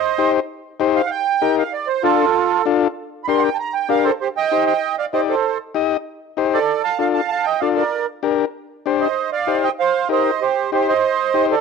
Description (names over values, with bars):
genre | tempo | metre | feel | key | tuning
latin | 194 BPM | 4/4 | straight | C dorian | A4 = 445 Hz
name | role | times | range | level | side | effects
accordion | melody | 0.0-11.6 s | F4 to C6 | -18 LUFS | right 9 dB | light tremolo tuning, cassette tape, plate reverb
combo organ | accompaniment | 0.2-11.6 s | D4 to Eb5 | -20 LUFS | left 10 dB | cassette tape, plate reverb
room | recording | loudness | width
wet booth ambience, RT60 0.2 s | home recording on cassette | -16 LUFS | side -5 dB against mid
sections
0.0-4.2 A section; 4.2-11.6 B section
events
accordion solo 0.0-4.2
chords
0.0 Cm7; 1.7 Dm; 3.0 Gm; 4.2 Cm; 6.7 Dm; 7.9 Gm; 9.2 Cm